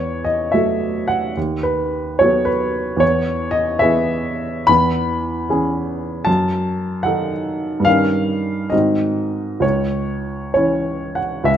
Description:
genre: classical, romantic character piece for solo piano.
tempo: 61-77 BPM (dotted quarters).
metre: 6/8.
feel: rubato.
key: E major, C# minor from 4.7 s.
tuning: A4 = 440 Hz.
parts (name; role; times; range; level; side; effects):
warm upright piano; solo; 0.0-11.6 s; C#2 to B5; -16 LUFS; equal; none.
room: moderate recital hall reverb, RT60 1.4 s.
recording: close, detailed microphones.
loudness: -16 LUFS.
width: side -9 dB against mid.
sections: 0.0-11.5 A section.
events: none.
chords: 0.0 F#m7/E; 1.4 B7/D#; 3.0 E; 4.7 C#m/E; 6.3 D#dim/F#; 7.9 D#7/G; 8.7 G#7; 9.6 C#m.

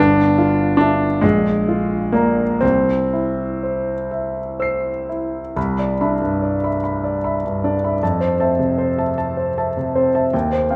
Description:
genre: classical, impressionist solo piano.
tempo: 39-54 BPM (dotted quarters).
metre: 6/8.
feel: rubato.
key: C major.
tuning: A4 = 440 Hz.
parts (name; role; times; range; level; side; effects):
clear grand piano; solo; 0.0-10.8 s; G1 to C7; -19 LUFS; equal; none.
room: wet recital hall reverb, RT60 1.4 s.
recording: none.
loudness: -19 LUFS.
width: mono.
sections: 0.0-5.6 A section; 5.6-10.8 A section.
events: none.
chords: 0.0 Gsus2; 1.2 Bb7; 2.6 C; 5.6 Cmaj9; 8.0 Fmaj7.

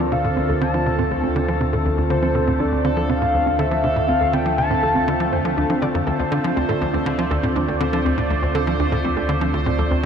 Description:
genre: ambient, sequencer-driven space music.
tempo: 121 BPM.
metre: 4/4.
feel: straight.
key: D minor.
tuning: A4 = 440 Hz.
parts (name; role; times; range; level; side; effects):
pulse-width lead; melody; 0.0-5.8 s; C5 to A5; -24 LUFS; left 2 dB; chorus, cassette tape, shimmer reverb, tape echo.
sweeping resonant pad; sustained chords; 0.0-10.1 s; D3 to D5; -23 LUFS; right 1 dB; chorus, shimmer reverb.
warbly dusty pluck; arpeggios; 0.0-10.1 s; C4 to D5; -26 LUFS; moving between left 1 dB and right 7 dB; chorus, auto-pan, shimmer reverb, tape echo.
tight sequencer bass; riff; 0.0-10.1 s; D2 to F3; -24 LUFS; equal; analog chorus, shimmer reverb, tape echo.
warm sub bass; bass; 0.0-10.1 s; D2; -26 LUFS; equal; none.
bubbling stepped-filter texture; texture; 0.0-10.1 s; A3 to C5; -29 LUFS; equal; chorus, built-in reverb, shimmer reverb.
room: wet huge ambient reverb, RT60 8.2 s.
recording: none.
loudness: -18 LUFS.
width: side -7 dB against mid.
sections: 0.0-10.1 A section.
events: none.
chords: 0.0 Dm7.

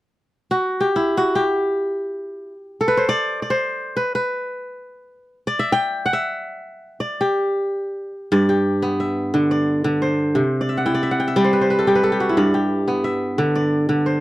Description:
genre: west african traditional.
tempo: free time.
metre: none.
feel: none.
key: G major.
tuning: A4 = 443 Hz.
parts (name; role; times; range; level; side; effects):
kora; arpeggios; 0.5-14.2 s; G2 to G5; -18 LUFS; equal; none.
room: light reverb.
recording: dry, close 1970s-style studio recording.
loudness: -18 LUFS.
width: side -16 dB against mid.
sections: 0.2-8.3 A section; 8.3-14.2 B section.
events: kora solo 0.2-8.3; kora fill 10.6-12.4.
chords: 0.2 N.C.; 8.3 G; 10.3 C; 12.4 G.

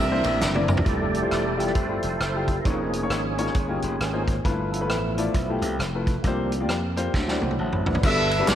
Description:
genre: uptempo gospel.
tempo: 134 BPM.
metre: 4/4.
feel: swing 62% on 8ths.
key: F major.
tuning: A4 = 440 Hz.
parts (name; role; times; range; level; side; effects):
warm horn section; melody; 0.0-0.7, 8.0-8.6 s; F#4 to E5; -25 LUFS; right 1 dB; none.
warm grand piano; accompaniment; 0.0-8.6 s; G2 to A5; -28 LUFS; left 3 dB; none.
overdriven tonewheel organ; sustained chords; 0.0-8.0 s; E3 to D5; -29 LUFS; right 2 dB; slow rotary speaker, chorus vibrato.
glassy slap bass; bass; 0.0-8.6 s; E1 to F2; -28 LUFS; equal; none.
warm soul drum kit; drums; 0.2-8.6 s; crash cymbal, hi-hat, kick drum, ride cymbal, rim click, snare drum, toms; -26 LUFS; equal; none.
handclaps and tambourine; percussion; 0.2-0.8, 8.0-8.6 s; none; -35 LUFS; right 1 dB; none.
room: moderate lush hall reverb, RT60 1.8 s, small room ambience.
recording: big arena sound.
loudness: -22 LUFS.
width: side -10 dB against mid.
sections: 0.9-8.0 A section.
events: drum fill 0.4-0.9, 7.1-8.0; tonewheel organ solo 0.9-8.0.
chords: 0.0 C9; 0.9 Fmaj9; 2.7 Db69/F; 4.4 G13; 6.2 C7sus4; 7.1 D9; 8.0 Gmaj9.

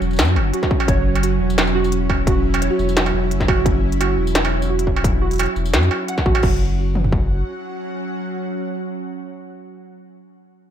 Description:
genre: half-time drum and bass.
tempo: 173 BPM.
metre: 4/4.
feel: swing 54% on 16ths, half-time.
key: unclear.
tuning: A4 = 440 Hz.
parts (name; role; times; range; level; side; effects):
bowed-like drone; sustained chords; 0.0-10.0 s; F#3 to F#5; -24 LUFS; right 2 dB; built-in reverb, vintage 12-bit sampler grit, sidechain pumping.
saturated sub bass; bass; 0.0-7.4 s; E1 to F#2; -20 LUFS; left 1 dB; none.
industrial drum kit; drums; 0.0-6.5 s; crash cymbal, hi-hat, snare drum, struck metal, tambourine; -22 LUFS; right 1 dB; none.
warbly dusty pluck; arpeggios; 0.5-6.6 s; F#4 to F#5; -25 LUFS; right 5 dB; ensemble chorus, digital delay.
industrial drum kit; drums; 0.6-7.2 s; kick drum, toms; -19 LUFS; equal; distortion.
folk marimba with soft mallets; melody; 2.7-2.9 s; F#4; -28 LUFS; equal; none.
room: light reverb.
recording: none.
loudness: -16 LUFS.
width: side -9 dB against mid.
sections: 0.0-6.4 A section; 6.4-9.2 B section.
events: drop 0.0-6.4.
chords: 0.0 F#5.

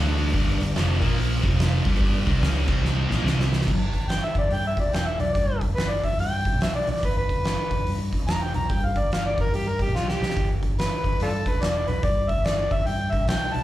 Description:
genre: blues rock power trio and southern rock.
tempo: 144 BPM.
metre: 4/4.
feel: swing 63% on 8ths.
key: G mixolydian.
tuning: A4 = 441 Hz.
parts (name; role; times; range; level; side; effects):
tonewheel organ; sustained chords; 0.0-3.7 s; Bb3 to D5; -38 LUFS; right 2 dB; slow rotary speaker, overdrive, chorus vibrato.
thick fuzz guitar; riff; 0.0-3.7 s; F2 to D4; -26 LUFS; equal; distortion.
vintage muted fingered electric bass; bass; 0.0-13.6 s; E1 to G2; -26 LUFS; equal; none.
oversized low-tuned drum kit; drums; 0.2-13.6 s; crash cymbal, hi-hat, kick drum, snare drum; -25 LUFS; equal; none.
overdriven harmonica; melody; 4.1-13.6 s; D4 to Bb5; -26 LUFS; equal; slapback echo.
room: little or no reverb.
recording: live gig heard through the venue's PA, club reverb.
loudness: -21 LUFS.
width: side -14 dB against mid.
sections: 0.0-3.7 A section; 3.7-13.6 B section.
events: drum fill 2.8-3.7, 9.9-10.4; harmonica solo 3.7-13.6.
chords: 0.3 G; 1.0 Bb5; 1.4 F5; 1.8 G; 2.6 C5; 3.0 Bb5; 3.3 C5; 3.7 G.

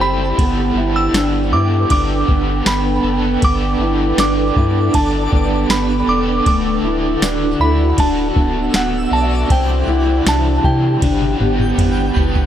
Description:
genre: dream pop.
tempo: 79 BPM.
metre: 4/4.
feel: straight.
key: G major.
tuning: A4 = 440 Hz.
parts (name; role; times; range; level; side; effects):
glassy synth bell; melody; 0.0-11.7 s; F#5 to E6; -21 LUFS; right 1 dB; chorus, tape echo.
cranked stack guitar; accompaniment; 0.0-12.5 s; C3 to C5; -25 LUFS; right 1 dB; overdrive, tremolo, wide subtle chorus, tape echo.
ethereal airy pad; sustained chords; 0.0-12.5 s; D4 to G5; -22 LUFS; right 1 dB; ensemble chorus, built-in reverb.
mellow electric guitar; arpeggios; 0.0-12.5 s; A3 to E4; -20 LUFS; left 1 dB; wide subtle chorus, tape echo.
warm sub bass; bass; 0.0-12.5 s; D1 to C3; -20 LUFS; equal; none.
twinkling granular texture; texture; 0.0-12.5 s; A4 to F#6; -31 LUFS; equal; built-in reverb, tape echo.
soft vintage rhythm box; drums; 0.4-12.5 s; kick drum, ride cymbal, snare drum, tambourine, toms; -17 LUFS; equal; none.
room: moderate plate reverb, RT60 2.3 s.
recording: echo-heavy mix.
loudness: -13 LUFS.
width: side -10 dB against mid.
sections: 0.0-12.5 A section.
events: drum fill 11.0-12.5.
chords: 0.4 Gadd9; 6.5 D; 9.5 C; 11.0 G.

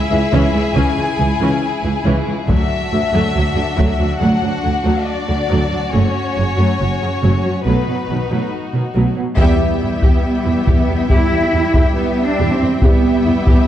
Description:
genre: cinematic, epic orchestral film score.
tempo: 70 BPM.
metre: 4/4.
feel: straight.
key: E minor from 9.4 s.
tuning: A4 = 440 Hz.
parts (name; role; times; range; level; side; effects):
warm symphonic violin section; melody; 0.0-13.7 s; B4 to G#5; -24 LUFS; left 5 dB; none.
rich chamber violin section; second line; 0.0-13.7 s; C#4 to E5; -25 LUFS; left 3 dB; none.
rich symphonic viola section; accompaniment; 0.1-13.7 s; C#3 to G4; -22 LUFS; equal; none.
clear symphonic cello section; bass; 0.1-13.7 s; C#2 to E4; -19 LUFS; right 2 dB; none.
warm symphonic double bass section; bass; 0.3-13.6 s; F#1 to E2; -20 LUFS; right 2 dB; none.
solo taiko drums; drums; 2.5-4.2, 9.4-13.7 s; none; -16 LUFS; left 1 dB; none.
mellow French horn section; sustained chords; 9.4-13.1 s; G4 to E5; -27 LUFS; left 5 dB; none.
rich symphonic string section; sustained chords; 9.4-13.7 s; G3 to E5; -23 LUFS; left 2 dB; none.
warm trombone section; sustained chords; 9.4-13.2 s; E3 to G3; -28 LUFS; right 2 dB; none.
room: moderate concert hall reverb, RT60 2.0 s.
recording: dark, warm production.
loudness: -14 LUFS.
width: side -11 dB against mid.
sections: 0.0-9.4 A section; 9.4-13.7 B section.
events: band accent 9.4-10.2.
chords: 0.0 C#m; 2.5 D; 5.9 F#m; 7.7 B7; 9.4 Em.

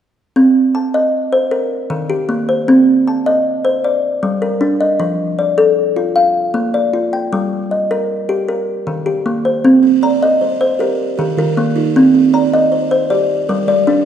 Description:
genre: southern african traditional, mbira-style interlocking cycle.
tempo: 104 BPM (dotted quarters).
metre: 12/8.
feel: straight.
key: C dorian.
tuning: A4 = 439 Hz.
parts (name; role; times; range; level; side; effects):
kalimba; arpeggios; 0.4-14.1 s; Eb3 to Bb5; -12 LUFS; equal; none.
buzzing kalimba; arpeggios; 9.8-14.1 s; Eb3 to D5; -18 LUFS; right 5 dB; none.
room: moderate scoring stage reverb, RT60 1.6 s.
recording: recorded in a church or concert hall.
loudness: -12 LUFS.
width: side -9 dB against mid.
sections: 0.4-9.6 A section; 9.6-14.1 A section.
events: none.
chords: 0.4 Cm; 1.5 Eb; 2.7 Cm; 3.8 Gm; 5.0 F; 6.2 Bb; 7.3 Gm; 8.5 Eb; 9.6 Cm; 10.8 Eb; 12.0 Cm; 13.1 Gm.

